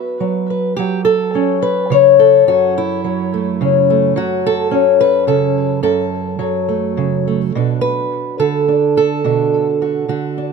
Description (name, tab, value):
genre	folk, solo fingerstyle acoustic guitar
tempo	106 BPM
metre	3/4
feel	straight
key	B minor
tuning	A4 = 440 Hz
part	fingerpicked old ladder-braced acoustic guitar	solo	0.0-10.5 s	F#2 to E5	-13 LUFS	left 1 dB	tape echo
room	light reverb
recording	close, detailed microphones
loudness	-13 LUFS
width	side -5 dB against mid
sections	0.0-7.5 A section; 7.5-10.5 B section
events	none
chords	0.0 B5; 0.8 F#m; 7.5 Bm7